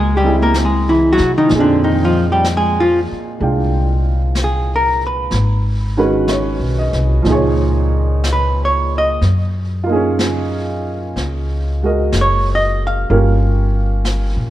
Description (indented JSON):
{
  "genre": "jazz ballad",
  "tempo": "62 BPM",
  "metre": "4/4",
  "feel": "swing 68% on 8ths",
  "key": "unclear",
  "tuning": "A4 = 440 Hz",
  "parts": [
    { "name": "hollow-body jazz guitar", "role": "melody", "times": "0.0-14.3 s", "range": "D3 to F5", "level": "-16 LUFS", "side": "equal", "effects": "none" },
    { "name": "warm upright piano", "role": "accompaniment", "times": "0.0-14.5 s", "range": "Bb2 to G5", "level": "-19 LUFS", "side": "right 2 dB", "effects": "none" },
    { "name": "upright bass", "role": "bass", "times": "0.0-14.5 s", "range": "Gb1 to C3", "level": "-17 LUFS", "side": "equal", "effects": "none" },
    { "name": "jazz brush drum kit", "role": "drums", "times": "0.5-14.5 s", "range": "brushed snare drum, hi-hat, snare drum", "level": "-26 LUFS", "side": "left 1 dB", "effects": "none" }
  ],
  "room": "light reverb",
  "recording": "worn, warbling old tape, cassette tape, warbly pitch drift",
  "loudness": "-13 LUFS",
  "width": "side -13 dB against mid",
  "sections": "0.0-14.5 A section",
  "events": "hollow-body jazz guitar solo 0.0-14.5",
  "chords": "0.0 Gb9; 1.5 Fm11; 5.3 Abm7; 7.3 Db69; 9.2 Gb69; 13.1 Gm7b5"
}